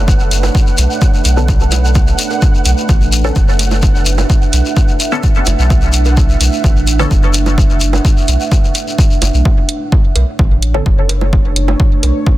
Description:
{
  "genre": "dub techno",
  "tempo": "128 BPM",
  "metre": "4/4",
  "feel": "straight",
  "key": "B minor",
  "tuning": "A4 = 443 Hz",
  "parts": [
    { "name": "deep dark ambient pad", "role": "sustained chords", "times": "0.0-12.4 s", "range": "A3 to E5", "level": "-20 LUFS", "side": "right 3 dB", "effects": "chorus, built-in reverb, sidechain pumping" },
    { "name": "soft dub sub bass", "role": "bass", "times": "0.0-12.1 s", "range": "F#1 to B1", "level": "-13 LUFS", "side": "equal", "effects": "tube saturation, sidechain pumping" },
    { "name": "flickering grainy texture", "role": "texture", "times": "0.0-9.5 s", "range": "F#5", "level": "-26 LUFS", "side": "right 3 dB", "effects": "built-in reverb, sidechain pumping" },
    { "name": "electronic kick drum", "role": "drums", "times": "0.1-12.4 s", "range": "none", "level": "-11 LUFS", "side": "equal", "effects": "none" },
    { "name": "shekere", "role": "percussion", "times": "0.1-9.4 s", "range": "none", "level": "-22 LUFS", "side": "left 5 dB", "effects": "none" },
    { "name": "electronic hi-hat", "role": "drums", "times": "0.3-12.1 s", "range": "none", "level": "-18 LUFS", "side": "right 2 dB", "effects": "none" },
    { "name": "cowbell and bongos", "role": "percussion", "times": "0.4-12.1 s", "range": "none", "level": "-25 LUFS", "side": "right 7 dB", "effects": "overdrive, sidechain pumping on perc, dub echo" },
    { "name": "filtered dub chord stab", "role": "stabs", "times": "1.4-7.1, 10.7-10.8 s", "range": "D3 to A4", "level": "-23 LUFS", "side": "left 1 dB", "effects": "chorus, phaser, sidechain pumping, dub echo" }
  ],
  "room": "little or no reverb",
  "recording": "dense, heavily limited modern master",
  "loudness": "-10 LUFS",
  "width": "side -16 dB against mid",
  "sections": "0.0-9.5 A section; 9.5-12.4 A section",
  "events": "filter sweep on synth stab 0.0-9.5",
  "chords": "0.0 Bm9"
}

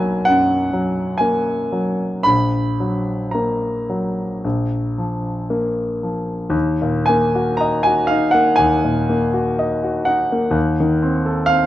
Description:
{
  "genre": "classical, romantic nocturne for solo piano",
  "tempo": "55-66 BPM",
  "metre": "4/4",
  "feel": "rubato",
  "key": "Eb minor",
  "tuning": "A4 = 440 Hz",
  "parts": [
    { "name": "warm grand piano", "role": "solo", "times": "0.0-11.7 s", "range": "Bb1 to B5", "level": "-16 LUFS", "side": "equal", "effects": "none" }
  ],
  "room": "light reverb",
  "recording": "worn, warbling old tape, cassette tape, warbly pitch drift",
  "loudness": "-16 LUFS",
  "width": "side -14 dB against mid",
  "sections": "0.0-6.5 A section; 6.5-11.7 B section",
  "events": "none",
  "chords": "0.0 B5; 2.3 Gbadd11/Bb; 4.4 Bb5; 6.5 Ebm; 10.6 Ebdim7"
}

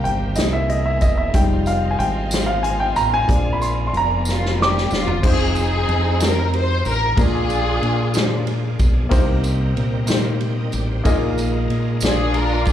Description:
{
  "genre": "slow gospel",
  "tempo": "62 BPM (dotted quarters)",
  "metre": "6/8",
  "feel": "straight",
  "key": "unclear",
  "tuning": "A4 = 440 Hz",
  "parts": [
    { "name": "warm baby grand piano", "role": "accompaniment", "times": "0.0-12.7 s", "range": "Bb2 to D6", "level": "-22 LUFS", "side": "left 1 dB", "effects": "slapback echo" },
    { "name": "bright tonewheel organ", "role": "sustained chords", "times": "0.0-12.7 s", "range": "Eb3 to Eb5", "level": "-32 LUFS", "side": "right 2 dB", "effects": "slow rotary speaker, chorus vibrato" },
    { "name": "dark studio string section", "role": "sustained chords", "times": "0.0-5.2 s", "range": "F4 to G5", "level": "-32 LUFS", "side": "equal", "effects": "none" },
    { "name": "fingered electric bass", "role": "bass", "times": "0.0-12.7 s", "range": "E1 to Bb2", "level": "-21 LUFS", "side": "equal", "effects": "none" },
    { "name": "swinging big-band drum kit", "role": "drums", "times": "0.1-12.7 s", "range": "crash cymbal, hi-hat, kick drum, ride cymbal, snare drum, toms", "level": "-22 LUFS", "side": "equal", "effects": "none" },
    { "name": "tambourine", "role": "percussion", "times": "0.4-12.7 s", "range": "none", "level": "-34 LUFS", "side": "right 4 dB", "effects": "none" },
    { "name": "warm studio string section", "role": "melody", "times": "4.3-8.4, 12.0-12.7 s", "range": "C4 to C5", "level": "-21 LUFS", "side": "left 1 dB", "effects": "slapback echo" }
  ],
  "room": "light reverb",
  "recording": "live gig heard through the venue's PA, club reverb",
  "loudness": "-16 LUFS",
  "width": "side -10 dB against mid",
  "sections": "0.0-5.2 A section; 5.2-12.7 B section",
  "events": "grand piano solo 0.0-5.2; drum fill 4.3-5.2",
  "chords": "0.4 Caug7; 1.3 Fm7; 3.3 Bb7; 5.2 Fm7; 7.2 Bb7; 9.1 Cm7; 11.1 Bb7sus4; 12.0 Bb7"
}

